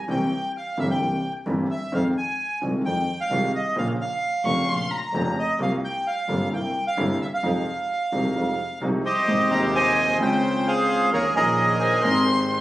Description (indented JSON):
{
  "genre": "tango",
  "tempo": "130 BPM",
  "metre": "4/4",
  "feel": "rubato",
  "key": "F minor, Ab major from 9.3 s",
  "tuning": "A4 = 442 Hz",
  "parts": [
    { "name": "bandoneon", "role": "melody", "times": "0.1-12.2 s", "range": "G4 to Bb5", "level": "-23 LUFS", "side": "right 1 dB", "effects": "none" },
    { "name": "warm concert grand piano", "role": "accompaniment", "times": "0.1-12.6 s", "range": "Eb1 to Ab4", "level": "-26 LUFS", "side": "equal", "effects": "none" },
    { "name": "clear double bass", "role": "bass", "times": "0.1-12.6 s", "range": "F1 to F2", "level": "-29 LUFS", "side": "right 1 dB", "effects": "none" },
    { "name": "rich violin", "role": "second line", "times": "4.4-5.3, 11.8-12.6 s", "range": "Ab5 to Db6", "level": "-25 LUFS", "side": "left 2 dB", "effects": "none" },
    { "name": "dark clarinet", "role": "second line", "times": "11.8-12.6 s", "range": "Bb4 to C5", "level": "-30 LUFS", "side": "left 2 dB", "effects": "none" }
  ],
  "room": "moderate large studio reverb, RT60 1.0 s",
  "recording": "recorded on a phone in the room, club reverb, compression",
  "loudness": "-21 LUFS",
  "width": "side -15 dB against mid",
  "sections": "0.0-9.3 A section; 9.3-12.6 B section",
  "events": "none",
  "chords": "0.1 C7; 1.9 Fm7; 3.8 Bbm; 5.6 C7sus4; 6.5 C7; 7.4 Fm7; 9.3 Abmaj7; 10.2 Dbmaj7; 11.1 Eb7sus4; 12.0 Abmaj7"
}